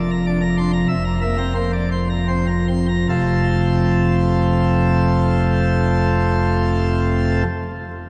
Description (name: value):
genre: classical, organ toccata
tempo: 71-102 BPM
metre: 3/4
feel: straight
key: F major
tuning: A4 = 439 Hz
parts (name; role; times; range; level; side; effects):
- pipe organ, plenum; solo; 0.0-7.4 s; F1 to C6; -18 LUFS; equal; none
room: wet cathedral reverb, RT60 4.8 s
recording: dark, warm production, vinyl crackle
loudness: -18 LUFS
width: mono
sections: 0.0-3.1 A section; 3.1-8.1 B section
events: slowing down 0.0-3.1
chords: 0.0 Bb/F; 3.1 F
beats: 0.27 | 0.89 1.55 2.28 | 3.10 3.95 4.80 | 5.65 6.50 7.34